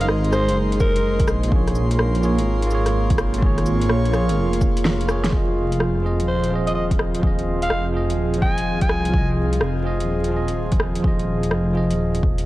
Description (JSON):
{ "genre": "future garage", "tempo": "126 BPM", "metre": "4/4", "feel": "swing 66% on 16ths", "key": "F minor", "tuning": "A4 = 440 Hz", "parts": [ { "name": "growling alto saxophone", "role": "melody", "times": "0.0-1.3, 6.3-9.3 s", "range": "Bb4 to Ab5", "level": "-26 LUFS", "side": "equal", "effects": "analog delay" }, { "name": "bell-like tine electric piano", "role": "accompaniment", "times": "0.0-12.5 s", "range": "F3 to Eb5", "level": "-25 LUFS", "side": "right 2 dB", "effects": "fast stereo tremolo, sidechain pumping, analog delay" }, { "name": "airy breathy pad", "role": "sustained chords", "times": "0.0-12.5 s", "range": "F3 to C6", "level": "-26 LUFS", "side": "left 1 dB", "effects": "chorus, sidechain pumping" }, { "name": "dark detuned saw bass", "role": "bass", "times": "0.0-12.5 s", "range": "Eb1 to C2", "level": "-22 LUFS", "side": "equal", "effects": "sidechain pumping" }, { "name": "deep house drum kit", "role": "drums", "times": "0.0-12.4 s", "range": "cabasa, hi-hat, rim click, snare drum", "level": "-26 LUFS", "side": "equal", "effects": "overdrive" }, { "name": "electronic kick drum", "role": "drums", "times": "0.8-12.4 s", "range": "none", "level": "-21 LUFS", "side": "equal", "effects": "overdrive" } ], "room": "light reverb", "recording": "vinyl crackle", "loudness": "-18 LUFS", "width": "side -16 dB against mid", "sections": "0.0-5.3 A section; 5.3-12.5 B section", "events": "kick drops out 4.8-5.3; drum fill 4.8-5.3", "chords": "0.0 Ab; 1.5 Bbm7; 5.3 Fm7", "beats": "0.09 0.56 1.04 | 1.52 1.99 2.47 2.94 | 3.42 3.90 4.37 4.85 | 5.33 5.80 6.28 6.75 | 7.23 7.71 8.18 8.66 | 9.13 9.61 10.09 10.56 | 11.04 11.52 11.99" }